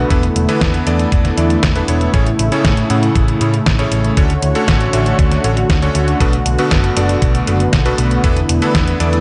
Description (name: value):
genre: synthwave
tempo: 118 BPM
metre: 4/4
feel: straight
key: A major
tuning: A4 = 440 Hz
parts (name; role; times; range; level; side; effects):
- warm analog pad; sustained chords; 0.0-9.2 s; C#3 to C#5; -20 LUFS; equal; subtle chorus, sidechain pumping
- bright electric grand piano; stabs; 0.0-9.2 s; A2 to F#5; -22 LUFS; equal; none
- hollow-body short-scale picked electric bass; bass; 0.0-9.2 s; E1 to A2; -19 LUFS; equal; none
- detuned 8-bit digital drum machine; drums; 0.1-9.2 s; hi-hat, snare drum; -22 LUFS; equal; studio reverb
- electronic kick drum; drums; 0.1-8.8 s; none; -18 LUFS; equal; studio reverb
room: light reverb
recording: nothing above 10.7 kHz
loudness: -14 LUFS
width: mono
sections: 0.0-9.2 A section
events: none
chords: 0.1 E7sus4; 2.1 Amaj7; 4.2 Dmaj7; 6.2 Bm7; 8.2 E7sus4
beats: | 0.10 0.61 1.12 1.63 | 2.14 2.65 3.15 3.66 | 4.17 4.68 5.19 5.70 | 6.21 6.71 7.22 7.73 | 8.24 8.75